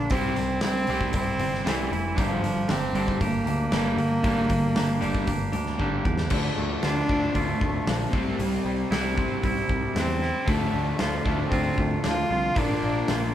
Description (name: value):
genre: quiet-loud alternative rock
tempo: 116 BPM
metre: 4/4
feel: straight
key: D minor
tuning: A4 = 437 Hz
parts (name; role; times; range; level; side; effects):
- rich cello; melody; 0.0-13.3 s; E3 to F4; -28 LUFS; equal; none
- twangy electric guitar; arpeggios; 0.0-13.3 s; G2 to G4; -31 LUFS; right 1 dB; none
- overdriven semi-hollow guitar; riff; 0.0-13.3 s; G2 to E4; -30 LUFS; left 1 dB; none
- overdriven picked electric bass; bass; 0.0-13.3 s; F1 to E2; -30 LUFS; equal; none
- big rock drum kit; drums; 0.1-13.2 s; crash cymbal, hi-hat, kick drum, snare drum; -28 LUFS; equal; none
room: light reverb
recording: band playing live in one room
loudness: -22 LUFS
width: side -11 dB against mid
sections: 0.0-6.3 A section; 6.3-13.3 B section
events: drum fill 5.8-6.3; cello solo 6.3-13.3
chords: 0.1 C; 2.2 Gm; 6.3 Dm; 8.1 C; 10.5 Dm; 12.6 Bb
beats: | 0.11 0.63 1.15 1.66 | 2.18 2.70 3.22 3.73 | 4.25 4.77 5.29 5.81 | 6.32 6.84 7.36 7.88 | 8.40 8.92 9.44 9.96 | 10.48 11.00 11.52 12.04 | 12.56 13.09